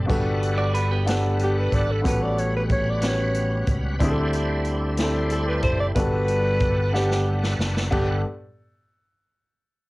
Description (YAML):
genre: slow gospel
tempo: 61 BPM (dotted quarters)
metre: 6/8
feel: straight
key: G major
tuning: A4 = 440 Hz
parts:
  - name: warm grand piano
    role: accompaniment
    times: 0.0-8.2 s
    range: G2 to F#5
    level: -26 LUFS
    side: left 1 dB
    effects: cassette tape
  - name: bright tonewheel organ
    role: sustained chords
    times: 0.0-8.2 s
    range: G3 to F#5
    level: -32 LUFS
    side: right 1 dB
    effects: slow rotary speaker, chorus vibrato, cassette tape
  - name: fingered electric bass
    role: bass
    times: 0.0-8.2 s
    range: F#1 to D2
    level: -24 LUFS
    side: equal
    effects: none
  - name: swinging big-band drum kit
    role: drums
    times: 0.1-8.1 s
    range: crash cymbal, hi-hat, kick drum, snare drum, splash cymbal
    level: -26 LUFS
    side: equal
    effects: cassette tape
  - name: clean electric guitar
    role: second line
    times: 0.6-1.9 s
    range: B3 to D5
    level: -29 LUFS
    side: right 3 dB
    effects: cassette tape
  - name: warm alto saxophone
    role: melody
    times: 1.4-8.2 s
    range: G4 to D5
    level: -26 LUFS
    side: equal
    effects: cassette tape
room: light reverb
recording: home recording on cassette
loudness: -20 LUFS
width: side -21 dB against mid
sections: 0.0-7.9 A section; 7.9-9.9 B section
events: drum fill 6.9-7.9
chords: 0.1 Gmaj9; 2.0 A13; 4.0 D9sus4; 6.0 Gmaj9